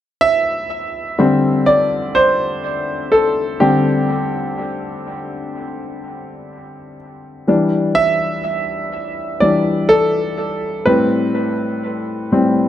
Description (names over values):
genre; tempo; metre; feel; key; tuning
R&B; 62 BPM; 4/4; swing 54% on 16ths; unclear; A4 = 440 Hz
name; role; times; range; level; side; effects
clear concert grand piano; solo; 0.2-12.7 s; A2 to E5; -15 LUFS; equal; dub echo
room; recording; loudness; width
light reverb, small room reverb; echo-heavy mix; -15 LUFS; side -11 dB against mid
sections
0.0-12.7 A section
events
grand piano solo 0.0-12.7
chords
0.0 D9sus4; 7.5 Em7; 10.9 Am9